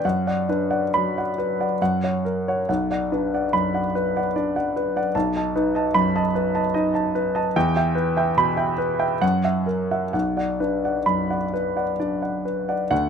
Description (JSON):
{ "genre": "classical, romantic character piece for solo piano", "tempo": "64-76 BPM", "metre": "3/4", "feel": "rubato", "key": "B minor", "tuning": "A4 = 440 Hz", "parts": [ { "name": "clear grand piano", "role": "solo", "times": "0.0-13.1 s", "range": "B1 to B5", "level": "-20 LUFS", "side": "equal", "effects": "none" } ], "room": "light reverb", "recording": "close, detailed microphones", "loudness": "-20 LUFS", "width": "side -7 dB against mid", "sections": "0.0-12.9 A section", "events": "none", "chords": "0.0 Bm/F#; 1.8 F#; 2.7 Bm; 5.1 B7; 7.6 Em; 9.2 F#7; 10.1 Bm" }